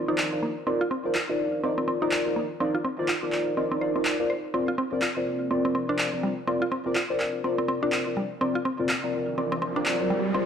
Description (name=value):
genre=deep house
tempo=124 BPM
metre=4/4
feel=swing 59% on 16ths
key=unclear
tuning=A4 = 440 Hz
part: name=chorused polysynth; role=stabs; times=0.0-10.5 s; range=C4 to D5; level=-26 LUFS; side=left 1 dB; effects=phaser, digital delay
part: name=mallet-like synth pluck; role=arpeggios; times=0.1-10.4 s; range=G3 to C5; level=-30 LUFS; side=right 1 dB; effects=chorus, digital delay
part: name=electronic handclaps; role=drums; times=0.2-10.0 s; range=none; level=-29 LUFS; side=equal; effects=none
part: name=riser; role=sound effects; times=9.1-10.5 s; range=none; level=-31 LUFS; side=right 1 dB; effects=none
room=wet echo chamber reverb, RT60 1.3 s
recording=none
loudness=-24 LUFS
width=side -8 dB against mid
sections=0.0-10.5 A section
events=riser 9.1-10.5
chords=0.0 Cm11; 4.5 Bbadd9